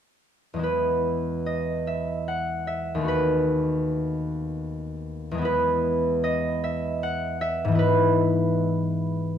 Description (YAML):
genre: classical, solo harp piece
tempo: 50 BPM (dotted quarters)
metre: 6/8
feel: uneven beats, rubato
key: E major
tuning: A4 = 440 Hz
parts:
  - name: concert harp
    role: solo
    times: 0.5-9.4 s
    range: D#2 to F#5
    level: -23 LUFS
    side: equal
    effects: none
room: light reverb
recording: close, detailed microphones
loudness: -22 LUFS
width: side -9 dB against mid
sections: 0.7-9.4 A section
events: none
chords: 0.7 E; 7.8 E/G#